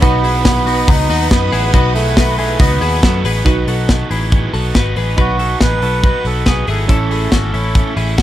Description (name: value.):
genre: jangly indie pop.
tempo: 140 BPM.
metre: 4/4.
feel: straight.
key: B mixolydian.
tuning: A4 = 440 Hz.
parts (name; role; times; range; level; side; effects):
melodica; melody; 0.0-7.9 s; A3 to B4; -19 LUFS; right 2 dB; slapback echo.
biting overdriven guitar; accompaniment; 0.0-8.2 s; A2 to E4; -23 LUFS; right 5 dB; none.
chorused retro synth keys; accompaniment; 0.0-8.2 s; B3 to B4; -26 LUFS; right 6 dB; none.
string machine, violins; sustained chords; 0.0-3.4 s; B4 to D#6; -26 LUFS; equal; ensemble chorus.
twelve-string electric guitar; arpeggios; 0.0-8.2 s; C#4 to B4; -22 LUFS; left 7 dB; phaser.
vintage muted picked electric bass; bass; 0.0-8.2 s; G#1 to F#2; -18 LUFS; equal; none.
modern studio drum kit; drums; 0.0-8.2 s; hi-hat, kick drum, snare drum; -15 LUFS; equal; none.
room: light reverb.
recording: none.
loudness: -12 LUFS.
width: side -13 dB against mid.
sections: 0.0-3.5 A section; 3.5-5.2 B section; 5.2-8.2 C section.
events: none.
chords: 0.0 B; 6.9 A.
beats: | 0.03 0.46 0.88 1.31 | 1.74 2.17 2.60 3.03 | 3.46 3.89 4.32 4.75 | 5.17 5.61 6.04 6.46 | 6.89 7.33 7.75 8.19.